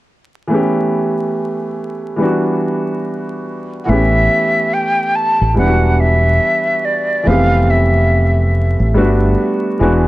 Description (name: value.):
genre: hip hop.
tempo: 71 BPM.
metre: 4/4.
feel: swing 61% on 16ths.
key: unclear.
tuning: A4 = 441 Hz.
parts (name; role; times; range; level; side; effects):
warm upright piano; accompaniment; 0.5-10.1 s; E3 to G4; -16 LUFS; equal; cassette tape, low-pass filter.
breathy jazz flute; melody; 3.8-8.5 s; D5 to A5; -16 LUFS; equal; low-pass filter, tape echo.
deep dub fingered electric bass; bass; 3.9-10.1 s; E1 to A1; -14 LUFS; equal; none.
room: light reverb.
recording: vinyl crackle.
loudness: -12 LUFS.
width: side -17 dB against mid.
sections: 0.5-3.9 A section; 3.9-10.1 B section.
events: none.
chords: 0.5 A7; 2.2 Em7; 3.9 A7; 5.6 Em7; 7.3 Fmaj9#11; 9.0 Gmaj7.